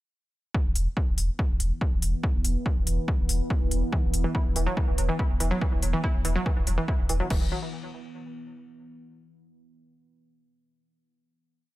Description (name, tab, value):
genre	driving peak-time techno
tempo	142 BPM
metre	4/4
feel	straight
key	unclear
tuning	A4 = 435 Hz
part	deep dark ambient pad	drone	1.7-7.3 s	E3 to B3	-36 LUFS	equal	chorus, built-in reverb, sidechain pumping
part	electronic kick drum	drums	0.5-7.4 s	none	-26 LUFS	equal	studio reverb
part	warm sub bass	bass	0.7-7.5 s	E1	-27 LUFS	equal	tube saturation, sidechain pumping, low-pass filter
part	techno drum kit	drums	0.8-7.4 s	crash cymbal, hi-hat	-33 LUFS	left 1 dB	studio reverb
part	analog pluck	riff	3.9-7.5 s	E3 to E4	-31 LUFS	right 1 dB	chorus, sidechain pumping, tape echo
room	digital ambience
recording	echo-heavy mix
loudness	-24 LUFS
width	side -17 dB against mid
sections	0.5-7.3 groove; 7.3-9.0 final chord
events	none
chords	0.5 E5; 7.3 N.C.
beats	| 0.55 0.97 1.39 1.81 | 2.23 2.66 3.08 3.50 | 3.92 4.35 4.77 5.19 | 5.62 6.04 6.46 6.88 | 7.30